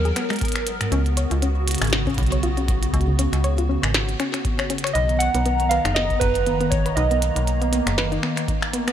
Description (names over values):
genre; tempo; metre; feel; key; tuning
IDM; 119 BPM; 4/4; swing 56% on 16ths; unclear; A4 = 441 Hz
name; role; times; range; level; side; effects
hollow soft pad; sustained chords; 0.0-8.9 s; C#3 to A#5; -27 LUFS; equal; ensemble chorus
metallic FM bass; bass; 0.0-8.2 s; F#1 to D#2; -22 LUFS; equal; none
soft round pluck; arpeggios; 0.1-8.9 s; G#2 to C#5; -28 LUFS; left 1 dB; chorus, digital delay
glitchy drum kit; drums; 0.1-8.9 s; finger snaps, hi-hat, snare drum; -27 LUFS; equal; studio reverb, digital delay
electronic kick drum; drums; 0.4-8.6 s; none; -26 LUFS; equal; studio reverb
warbly lo-fi synth keys; melody; 4.9-8.4 s; B4 to F#5; -23 LUFS; right 2 dB; chorus, tape echo
room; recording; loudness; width
light reverb; none; -19 LUFS; side -10 dB against mid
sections
0.0-8.9 A section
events
none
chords
0.0 G#m7; 0.9 C#7sus4; 5.0 Bmaj7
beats
0.41 | 0.92 1.42 1.93 2.43 | 2.94 3.44 3.94 4.45 | 4.95 5.46 5.96 6.46 | 6.97 7.47 7.98 8.48